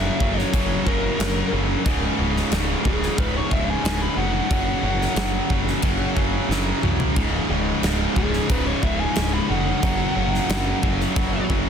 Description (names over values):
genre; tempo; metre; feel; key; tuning
quiet-loud alternative rock; 90 BPM; 4/4; straight; unclear; A4 = 442 Hz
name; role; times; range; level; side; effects
bluesy overdriven lead guitar; melody; 0.0-11.5 s; Ab4 to Cb6; -29 LUFS; left 2 dB; distortion, analog delay
high-gain distorted guitar; riff; 0.0-11.7 s; Db2 to Gb3; -26 LUFS; left 16 dB; distortion
tight distorted guitar; riff; 0.0-11.7 s; Db2 to Gb3; -26 LUFS; right 16 dB; distortion
growling picked electric bass; bass; 0.0-11.7 s; Db1 to C2; -26 LUFS; equal; overdrive
huge arena drum kit; drums; 0.2-11.7 s; crash cymbal, kick drum, snare drum, toms; -24 LUFS; equal; none
thick fuzz guitar; riff; 7.2-11.7 s; Db2 to Gb3; -29 LUFS; equal; distortion
room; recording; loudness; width
light reverb; dense, heavily limited modern master; -19 LUFS; side -7 dB against mid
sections
0.0-11.7 A section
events
lead electric guitar solo 0.0-11.7; drum fill 6.5-7.2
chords
0.0 Gb; 1.9 Db5; 4.5 Gb5; 7.2 Db5; 9.8 Gb5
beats
0.53 1.20 | 1.86 2.52 3.18 3.85 | 4.51 5.17 5.84 6.50 | 7.17 7.83 8.50 9.17 | 9.83 10.50 11.16